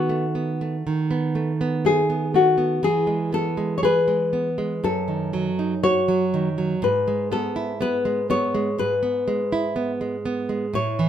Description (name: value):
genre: romantic duo for nylon-string guitar and classical guitar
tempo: 60 BPM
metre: 4/4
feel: rubato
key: E major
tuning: A4 = 440 Hz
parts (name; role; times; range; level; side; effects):
- nylon-string guitar; melody; 0.0-11.1 s; F#4 to C#5; -22 LUFS; left 4 dB; none
- nylon-string guitar; accompaniment; 0.0-11.1 s; F#2 to G#4; -23 LUFS; right 4 dB; none
room: moderate studio reverb, RT60 0.8 s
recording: minimal, uncompressed stereo recording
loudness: -20 LUFS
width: side -10 dB against mid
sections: 0.0-11.1 A section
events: none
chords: 0.0 B7/D#; 2.8 E; 4.8 D#dim/F#; 6.8 E/G#